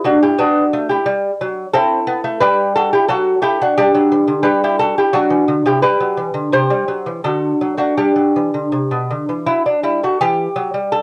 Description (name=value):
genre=classical, baroque-style dance for lute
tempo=79-89 BPM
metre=3/4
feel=rubato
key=G major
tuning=A4 = 445 Hz
part: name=lute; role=solo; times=0.0-11.0 s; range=B2 to C5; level=-16 LUFS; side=equal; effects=none
room=light reverb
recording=home recording on cassette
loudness=-16 LUFS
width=mono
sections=0.0-10.2 A section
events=none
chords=0.0 Em; 1.7 Am7; 3.1 D/F#; 3.8 G5; 5.2 D7; 5.8 G; 6.5 C; 7.3 D; 8.0 G; 10.2 Em